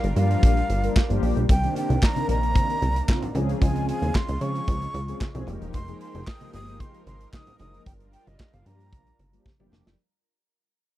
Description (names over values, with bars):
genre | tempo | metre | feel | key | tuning
early-eighties boogie funk | 113 BPM | 4/4 | straight | unclear | A4 = 440 Hz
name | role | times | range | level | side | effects
breathy jazz flute | melody | 0.0-9.5 s | Eb5 to Eb6 | -31 LUFS | right 1 dB | none
lush unison pad | sustained chords | 0.0-10.0 s | C3 to G5 | -36 LUFS | right 1 dB | chorus
plucky analog bass | bass | 0.0-10.0 s | E1 to Db3 | -25 LUFS | equal | none
modern studio drum kit | drums | 0.0-10.0 s | handclaps, hi-hat, kick drum, snare drum | -22 LUFS | equal | none
mellow synth brass | accompaniment | 0.2-9.9 s | Eb3 to Bb4 | -30 LUFS | left 2 dB | chorus
congas | percussion | 1.5-9.9 s | none | -35 LUFS | right 3 dB | none
room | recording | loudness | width
little or no reverb | dry, close 1970s-style studio recording | -21 LUFS | side -15 dB against mid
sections
0.0-10.0 A section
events
fade-out 0.0-10.0; drum fill 9.5-10.0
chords
0.0 Gm7; 1.5 Cm9; 3.4 Dbmaj7; 5.5 Fm11; 7.9 Gm7